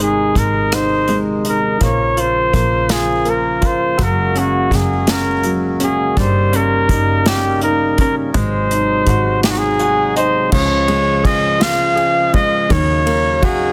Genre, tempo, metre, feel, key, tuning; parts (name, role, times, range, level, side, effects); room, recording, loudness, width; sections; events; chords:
six-eight pop ballad; 55 BPM (dotted quarters); 6/8; straight; Db major; A4 = 436 Hz
clear flugelhorn; melody; 0.0-13.7 s; Gb4 to F5; -19 LUFS; equal
bright concert grand piano; accompaniment; 0.0-13.7 s; Db3 to Ab5; -22 LUFS; equal
percussive tonewheel organ; sustained chords; 0.0-13.7 s; C3 to Gb4; -26 LUFS; equal; overdrive, slow rotary speaker
dark double bass; bass; 0.0-13.7 s; Gb1 to Eb2; -24 LUFS; equal
unplugged drum kit; drums; 0.4-13.6 s; crash cymbal, hi-hat, kick drum, ride cymbal, rim click, snare drum; -22 LUFS; equal; soft clipping on snare
light reverb, studio ambience; dense, heavily limited modern master; -15 LUFS; mono
0.0-10.5 A section; 10.5-13.7 B section
grand piano fill 9.4-10.5
0.0 Ab; 1.8 Bbm; 4.0 Gbadd9; 6.2 Eb7/G; 8.3 Ab7; 10.5 Db; 12.7 Ebm7